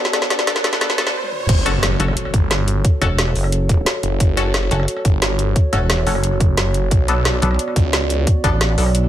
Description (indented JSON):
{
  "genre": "dark technical drum and bass",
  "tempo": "177 BPM",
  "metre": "4/4",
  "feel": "straight",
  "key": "F# phrygian",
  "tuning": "A4 = 441 Hz",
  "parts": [
    { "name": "dark analog pad", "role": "sustained chords", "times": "0.0-9.1 s", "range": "B3 to D5", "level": "-26 LUFS", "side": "right 2 dB", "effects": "chorus, sidechain pumping" },
    { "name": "band-passed chord stab", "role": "stabs", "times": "0.0-8.8 s", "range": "B3 to A4", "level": "-24 LUFS", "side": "left 3 dB", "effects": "phaser, digital delay" },
    { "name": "drum and bass drum kit", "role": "drums", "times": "0.0-9.0 s", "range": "crash cymbal, hi-hat, rim click, snare drum, toms", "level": "-20 LUFS", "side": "equal", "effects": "none" },
    { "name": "riser and impact", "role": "sound effects", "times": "0.0-2.8 s", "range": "none", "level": "-27 LUFS", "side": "right 1 dB", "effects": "none" },
    { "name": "phased detuned saw bass", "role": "bass", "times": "1.5-8.3 s", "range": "F#1 to C#2", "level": "-19 LUFS", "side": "equal", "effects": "phaser, tube saturation, sidechain pumping" },
    { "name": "electronic kick drum", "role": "drums", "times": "1.5-8.5 s", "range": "none", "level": "-15 LUFS", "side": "equal", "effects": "none" },
    { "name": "pulsing pluck wobble bass", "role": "bass", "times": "2.0-9.1 s", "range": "E1 to B1", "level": "-18 LUFS", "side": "equal", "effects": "chorus" }
  ],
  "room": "light reverb",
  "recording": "high-pass filter",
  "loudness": "-15 LUFS",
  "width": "side -12 dB against mid",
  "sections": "0.0-1.5 A section; 1.5-9.1 B section",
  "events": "build-up 0.0-1.5; drum fill 0.0-1.2, 1.2; riser 0.0-1.5; filter sweep on synth stab 0.0-1.5; break 1.2-1.5; drop 1.5-9.1; impact 1.5-2.8",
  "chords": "0.0 Bm7; 1.5 F#m; 6.9 Bm7"
}